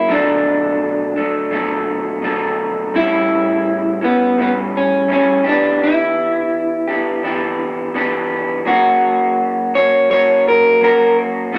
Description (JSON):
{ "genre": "indie pop", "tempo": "84 BPM", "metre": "4/4", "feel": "straight", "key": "unclear", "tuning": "A4 = 441 Hz", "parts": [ { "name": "electric guitar through a small old amp", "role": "melody", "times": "0.0-11.6 s", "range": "B3 to C#5", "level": "-17 LUFS", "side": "equal", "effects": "none" }, { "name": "electric guitar through a small old amp", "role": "accompaniment", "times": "0.0-11.6 s", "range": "A2 to G4", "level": "-21 LUFS", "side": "equal", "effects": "vibrato effect" } ], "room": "wet large studio reverb, RT60 0.9 s", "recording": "none", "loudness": "-16 LUFS", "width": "mono", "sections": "0.0-11.6 A section", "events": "none", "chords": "0.1 Bm7; 2.9 A7; 5.5 Em7; 8.7 F#" }